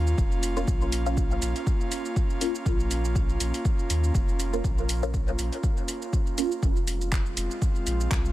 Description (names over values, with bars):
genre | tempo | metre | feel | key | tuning
dub techno | 121 BPM | 4/4 | swing 56% on 16ths | unclear | A4 = 440 Hz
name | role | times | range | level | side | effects
airy breathy pad | sustained chords | 0.0-8.3 s | Ab3 to F4 | -33 LUFS | right 2 dB | chorus, sidechain pumping
warm sub bass | bass | 0.0-8.3 s | F1 to Eb2 | -28 LUFS | equal | sidechain pumping
deep house drum kit | drums | 0.1-8.3 s | handclaps, hi-hat, shaker | -34 LUFS | right 1 dB | overdrive
electronic kick drum | drums | 0.2-8.2 s | none | -26 LUFS | equal | overdrive
filtered dub chord stab | stabs | 0.6-6.5 s | Bb3 to F4 | -33 LUFS | equal | phaser, sidechain pumping, dub echo
room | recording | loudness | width
little or no reverb | none | -24 LUFS | side -15 dB against mid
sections
0.0-6.6 A section; 6.6-8.3 A section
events
none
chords
0.0 Bbm; 6.6 Fm